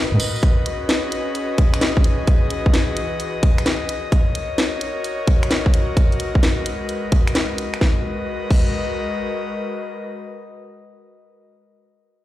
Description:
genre	UK garage, two-step garage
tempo	130 BPM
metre	4/4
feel	swing 67% on 16ths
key	G# minor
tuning	A4 = 440 Hz
part	airy breathy pad	sustained chords	0.0-11.3 s	E3 to D#5	-25 LUFS	left 2 dB	chorus, sidechain pumping
part	garage drum kit	drums	0.2-8.7 s	crash cymbal, finger snaps, hi-hat, snare drum	-23 LUFS	left 1 dB	none
part	electronic kick drum	drums	0.4-8.7 s	none	-16 LUFS	equal	none
room	moderate studio reverb, RT60 0.7 s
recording	played on a big sound system in a bare room, large studio reverb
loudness	-17 LUFS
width	side -14 dB against mid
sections	0.0-7.8 A section; 7.8-11.5 B section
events	none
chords	0.4 C#9sus4; 2.3 Emaj9; 3.9 D#m7; 6.0 G#m9

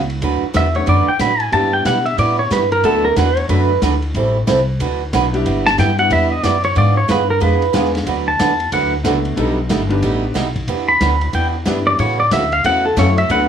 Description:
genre	country, western swing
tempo	184 BPM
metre	4/4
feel	swing 63% on 8ths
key	D major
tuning	A4 = 440 Hz
part	clear upright piano	accompaniment	0.0-13.5 s	F#3 to B4	-22 LUFS	left 2 dB	none
part	upright bass	bass	0.0-13.5 s	G1 to B2	-19 LUFS	left 1 dB	none
part	vintage drum kit	drums	0.1-13.4 s	hi-hat, kick drum, ride cymbal, snare drum	-26 LUFS	left 1 dB	none
part	picked steel-string acoustic guitar	accompaniment	0.2-13.5 s	B2 to B4	-20 LUFS	right 6 dB	none
part	pedal steel guitar	melody	0.6-13.5 s	A4 to B5	-16 LUFS	equal	none
room	light reverb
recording	small room ambience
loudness	-13 LUFS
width	side -8 dB against mid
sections	0.2-13.5 A section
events	pedal steel guitar solo 0.2-13.5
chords	0.2 D6; 1.5 G6; 2.8 D6; 4.1 Am7; 4.8 D6; 5.5 G6; 6.8 G#dim7; 8.1 D6; 9.4 B7alt; 10.7 Em7; 12.0 A6

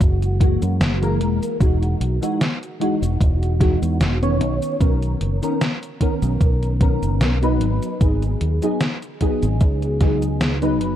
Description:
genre	vaporwave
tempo	75 BPM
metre	4/4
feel	swing 54% on 16ths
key	B major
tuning	A4 = 440 Hz
part	mellow FM electric piano	accompaniment	0.0-11.0 s	D#3 to C#5	-22 LUFS	equal	ensemble chorus, tape echo
part	fingered electric bass	bass	0.0-11.0 s	E1 to F#2	-20 LUFS	equal	none
part	electronic kick drum	drums	0.0-10.2 s	none	-18 LUFS	equal	overdrive
part	gated 80s digital drum machine	drums	0.0-11.0 s	cabasa, hi-hat, snare drum	-24 LUFS	equal	gated reverb, gated reverb snare, overdrive
room	little or no reverb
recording	dark, warm production, cassette tape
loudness	-17 LUFS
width	side -11 dB against mid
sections	0.0-11.0 A section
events	none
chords	0.0 F#9; 1.6 Emaj9; 4.4 Bmaj9; 7.6 G#m7

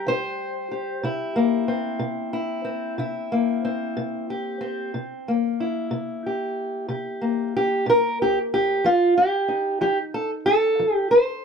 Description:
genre	acoustic country blues, solo or duo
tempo	62 BPM (dotted quarters)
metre	12/8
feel	straight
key	C mixolydian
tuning	A4 = 440 Hz
part	fingerpicked steel-string acoustic guitar	solo	0.0-11.4 s	C3 to C5	-21 LUFS	equal	none
room	light reverb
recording	none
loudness	-21 LUFS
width	side -6 dB against mid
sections	0.0-11.4 A section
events	none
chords	0.0 C7; 8.8 F7

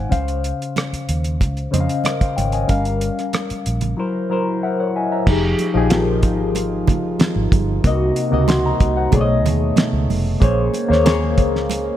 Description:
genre	lush 1970s-style soul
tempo	93 BPM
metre	4/4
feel	straight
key	F minor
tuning	A4 = 441 Hz
part	reed electric piano	accompaniment	0.0-12.0 s	B2 to C6	-20 LUFS	left 3 dB	phaser
part	vintage muted fingered electric bass	bass	0.0-11.9 s	F1 to F2	-21 LUFS	right 1 dB	none
part	cloth-damped thuddy drum kit	drums	0.1-11.9 s	crash cymbal, hi-hat, kick drum, rim click, snare drum	-19 LUFS	right 1 dB	none
part	congas	percussion	0.1-11.8 s	none	-27 LUFS	right 9 dB	none
part	mellow French horn section	sustained chords	5.3-12.0 s	C3 to Gb4	-27 LUFS	right 4 dB	stereo widening
room	light reverb, small room ambience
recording	none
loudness	-16 LUFS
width	side -12 dB against mid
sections	0.0-5.3 A section; 5.3-12.0 B section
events	reed electric piano fill 4.0-5.3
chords	0.1 Dbmaj7; 2.7 Gm7b5; 4.0 Gb7#11; 5.3 Fm9; 7.8 Cm7b5; 9.1 B13; 10.4 Bbm9

